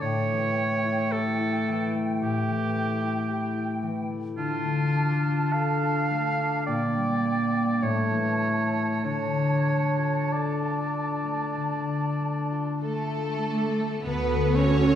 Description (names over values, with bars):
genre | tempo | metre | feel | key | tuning
classical | 47-57 BPM | 4/4 | rubato | D minor | A4 = 439 Hz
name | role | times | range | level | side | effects
clear clarinet | second line | 0.0-13.7 s | A3 to D4 | -30 LUFS | equal | none
clear oboe | second line | 0.0-12.8 s | F4 to F5 | -29 LUFS | right 2 dB | none
flute section | second line | 0.0-13.7 s | G5 to A5 | -34 LUFS | equal | none
concert harp | arpeggios | 0.0-15.0 s | A2 to A4 | -28 LUFS | left 2 dB | none
rich studio violin section | melody | 12.8-15.0 s | A4 to C#5 | -35 LUFS | equal | none
rich studio violin section | second line | 12.8-15.0 s | A4 to C#5 | -31 LUFS | right 1 dB | none
rich studio cello section | bass | 12.8-15.0 s | A3 to C#4 | -26 LUFS | right 3 dB | none
rich studio viola section | accompaniment | 14.0-15.0 s | F#4 to A4 | -29 LUFS | right 3 dB | none
rich symphonic double bass section | bass | 14.0-15.0 s | D2 | -27 LUFS | right 1 dB | none
room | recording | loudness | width
wet recital hall reverb, RT60 1.6 s | heard from further back in the room | -24 LUFS | side -10 dB against mid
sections
0.0-14.0 A section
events
none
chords
0.0 A7; 4.4 Dm; 6.7 Gm/Bb; 7.8 A; 9.0 Dm; 14.0 D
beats
| 0.02 1.12 2.21 3.29 | 4.37 5.54 6.67 7.82 | 9.03 10.30 11.56 12.83 | 14.04